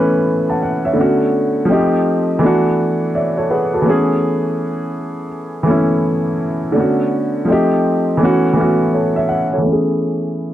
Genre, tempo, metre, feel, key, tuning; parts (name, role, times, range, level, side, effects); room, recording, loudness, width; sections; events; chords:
hip hop; 83 BPM; 4/4; swing 64% on 16ths; A major; A4 = 440 Hz
dark upright piano; solo; 0.0-10.5 s; D3 to A5; -14 LUFS; equal; low-pass filter
moderate small room reverb, RT60 0.5 s; cassette tape, low-pass filter; -14 LUFS; side -12 dB against mid
0.0-9.7 A section
upright piano fill 2.8-3.9
0.0 Amaj7; 1.0 Bm9; 1.7 F9; 2.4 E7sus4; 3.9 Amaj7; 6.8 Bm9; 7.5 F9; 8.2 A6; 9.7 Amaj7